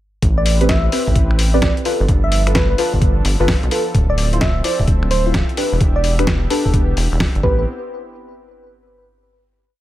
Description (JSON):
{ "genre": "UK garage, two-step garage", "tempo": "129 BPM", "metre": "4/4", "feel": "swing 65% on 16ths", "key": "A minor", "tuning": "A4 = 440 Hz", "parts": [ { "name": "warm analog pad", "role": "sustained chords", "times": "0.2-7.7 s", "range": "F3 to E5", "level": "-30 LUFS", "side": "right 1 dB", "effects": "chorus, sidechain pumping" }, { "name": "rubbery square bass", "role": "bass", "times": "0.2-7.7 s", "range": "D1 to B1", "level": "-17 LUFS", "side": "equal", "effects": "sidechain pumping" }, { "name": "boom bap sampler-style drum kit", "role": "drums", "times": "0.2-7.4 s", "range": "finger snaps, hi-hat, snare drum", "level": "-22 LUFS", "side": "left 1 dB", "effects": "none" }, { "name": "electronic kick drum", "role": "drums", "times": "0.2-7.6 s", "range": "none", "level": "-18 LUFS", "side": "equal", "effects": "none" }, { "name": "soft struck synth lead", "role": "melody", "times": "0.4-7.6 s", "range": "A4 to E5", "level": "-24 LUFS", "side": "equal", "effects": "chorus, digital delay" }, { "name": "deep mellow chord stab", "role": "stabs", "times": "0.6-7.6 s", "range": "C4 to C5", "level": "-22 LUFS", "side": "left 1 dB", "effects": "analog chorus, digital delay" } ], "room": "digital ambience", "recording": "faint mains hum", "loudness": "-14 LUFS", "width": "side -14 dB against mid", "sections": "0.2-7.7 groove; 7.7-9.5 final note", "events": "none", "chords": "0.2 Am9; 1.9 G9; 3.9 Dm7; 5.6 Em7; 7.4 Am9; 7.7 N.C." }